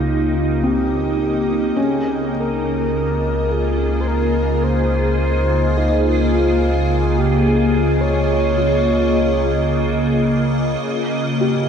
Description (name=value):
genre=ambient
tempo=53 BPM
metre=4/4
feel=straight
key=unclear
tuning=A4 = 440 Hz
part: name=breathy flute-like synth lead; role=melody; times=0.0-10.3 s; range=Eb4 to Db5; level=-23 LUFS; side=equal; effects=chorus, tremolo, shimmer reverb, ping-pong delay
part: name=evolving wavetable pad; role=sustained chords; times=0.0-11.7 s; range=Db3 to Eb5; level=-18 LUFS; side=equal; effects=ensemble chorus, built-in reverb, phaser, shimmer reverb
part: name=felt-muted upright piano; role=arpeggios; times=0.0-11.7 s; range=C4 to G4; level=-26 LUFS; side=equal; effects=shimmer reverb, ping-pong delay
part: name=warm sub bass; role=bass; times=0.0-10.8 s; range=Db2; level=-22 LUFS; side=equal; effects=none
room=wet huge ambient reverb, RT60 8.1 s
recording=worn, warbling old tape, cassette tape, warbly pitch drift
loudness=-15 LUFS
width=side -7 dB against mid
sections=0.0-10.8 A section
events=fade-in on soft synth lead 0.0-10.8; filter sweep on ambient pad 0.0-10.8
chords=0.0 Cm7/Db; 1.8 Bbm9/Db; 10.8 Eb7/Db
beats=0.65 | 1.78 2.91 4.04 5.17 | 6.31 7.44 8.57 9.70 | 10.84